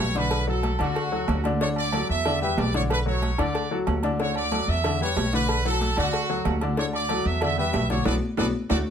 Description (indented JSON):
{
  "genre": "latin, salsa",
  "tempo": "186 BPM",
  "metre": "4/4",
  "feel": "straight",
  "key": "D major",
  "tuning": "A4 = 440 Hz",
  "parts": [
    { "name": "bright trumpet section", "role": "melody", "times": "0.0-8.8 s", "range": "F#4 to E5", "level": "-28 LUFS", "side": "right 2 dB", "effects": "plate reverb" },
    { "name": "clear concert grand piano", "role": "accompaniment", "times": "0.0-8.8 s", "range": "D3 to D5", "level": "-28 LUFS", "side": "left 3 dB", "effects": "none" },
    { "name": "upright bass", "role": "bass", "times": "0.0-8.8 s", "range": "B1 to E2", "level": "-27 LUFS", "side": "right 1 dB", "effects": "none" },
    { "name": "congas", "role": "percussion", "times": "0.1-8.8 s", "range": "none", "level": "-32 LUFS", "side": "left 1 dB", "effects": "none" },
    { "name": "cowbell", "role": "percussion", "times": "0.2-8.8 s", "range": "none", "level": "-35 LUFS", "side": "left 2 dB", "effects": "none" },
    { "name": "agogo bells and timbales", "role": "percussion", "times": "0.3-8.8 s", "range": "none", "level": "-33 LUFS", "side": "right 6 dB", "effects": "none" }
  ],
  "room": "moderate studio reverb, RT60 0.6 s",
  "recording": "none",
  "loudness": "-22 LUFS",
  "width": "side -8 dB against mid",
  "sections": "0.0-8.9 A section",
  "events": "band accent 8.1-8.9; drum fill 8.7",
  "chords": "0.3 Bm7; 1.0 D; 2.3 Em7; 2.9 Bm7; 3.5 D; 4.8 Em7; 5.5 Bm7; 6.1 D; 7.4 Em7; 8.1 Bm"
}